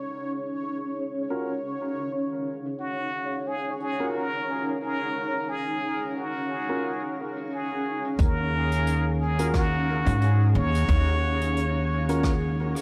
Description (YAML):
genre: ambient dub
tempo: 89 BPM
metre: 4/4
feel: swing 56% on 16ths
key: Eb minor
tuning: A4 = 440 Hz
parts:
  - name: granular cloud pad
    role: sustained chords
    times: 0.0-12.8 s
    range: Db4 to F5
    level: -34 LUFS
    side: equal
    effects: built-in reverb
  - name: bubbling stepped-filter texture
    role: texture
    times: 0.0-8.2 s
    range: Db5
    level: -39 LUFS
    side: equal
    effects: chorus, built-in reverb
  - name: vintage brush drum kit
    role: drums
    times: 0.1-12.8 s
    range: hi-hat, rim click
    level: -46 LUFS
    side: equal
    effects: low-pass filter on hats, low-pass filter on snare, low-pass filter on room, dub echo
  - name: dark upright piano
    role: stabs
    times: 1.3-12.3 s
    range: Db4 to Bb4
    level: -36 LUFS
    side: equal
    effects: dub echo
  - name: trumpet with plunger mute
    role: melody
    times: 2.8-12.5 s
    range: Gb4 to Db5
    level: -32 LUFS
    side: equal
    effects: dub echo
  - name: upright bass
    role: bass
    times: 8.2-12.7 s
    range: Eb2 to Ab2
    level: -26 LUFS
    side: equal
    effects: tube saturation
  - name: electronic kick drum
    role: drums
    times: 8.2-12.4 s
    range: none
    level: -27 LUFS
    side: equal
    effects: overdrive
room: light reverb, small room ambience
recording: none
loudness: -27 LUFS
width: mono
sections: 0.0-8.2 A section; 8.2-12.8 B section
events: filter sweep on ambient pad 0.0-8.2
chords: 0.0 Ebm7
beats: | 0.10 0.77 1.45 2.12 | 2.80 3.47 4.14 4.82 | 5.49 6.17 6.84 7.51 | 8.19 8.86 9.54 10.21 | 10.89 11.56 12.23